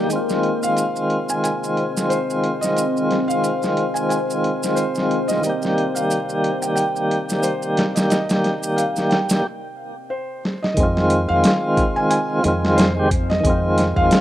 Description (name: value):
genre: trip hop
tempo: 90 BPM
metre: 4/4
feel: swing 56% on 16ths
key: F minor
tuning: A4 = 440 Hz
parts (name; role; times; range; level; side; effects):
- tonewheel organ; accompaniment; 0.0-14.2 s; Eb3 to G4; -20 LUFS; equal; overdrive, tremolo, tape echo
- deep dark ambient pad; sustained chords; 0.0-14.2 s; Bb3 to C5; -27 LUFS; left 2 dB; chorus, built-in reverb
- boom bap sampler-style drum kit; drums; 0.1-14.2 s; hi-hat, kick drum, snare drum; -22 LUFS; equal; low-pass filter on hats, small room reverb, low-pass filter on snare, low-pass filter on kick
- maracas; percussion; 0.1-9.4 s; none; -31 LUFS; right 4 dB; none
- felt-muted upright piano; melody; 0.6-14.2 s; C5 to Ab5; -25 LUFS; equal; tape echo
- deep dub fingered electric bass; bass; 10.8-14.1 s; F2; -22 LUFS; equal; none
room: light reverb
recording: rough home demo mix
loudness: -17 LUFS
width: side -13 dB against mid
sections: 0.0-10.8 A section; 10.8-14.2 B section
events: break 9.4-10.8; drum fill 10.4-10.8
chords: 0.1 Fm7; 5.4 Eb; 10.8 Fm7